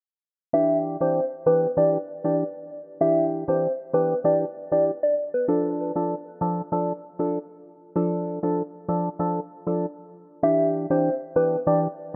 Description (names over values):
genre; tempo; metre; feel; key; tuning
dancehall; 97 BPM; 4/4; straight; unclear; A4 = 440 Hz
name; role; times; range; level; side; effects
soft struck synth lead; melody; 0.5-5.5, 10.4-11.8 s; B4 to E5; -25 LUFS; equal; chorus, digital delay
percussive organ stab; accompaniment; 0.5-11.9 s; E3 to A4; -28 LUFS; equal; chorus, phaser
room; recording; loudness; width
moderate plate reverb, RT60 3.6 s; low-pass filter; -24 LUFS; mono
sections
0.5-12.2 A section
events
none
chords
0.5 Em7; 5.5 Dm; 10.4 Em7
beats
| 0.54 1.16 1.77 2.39 | 3.01 3.63 4.25 4.87 | 5.49 6.10 6.72 7.34 | 7.96 8.58 9.20 9.81 | 10.43 11.05 11.67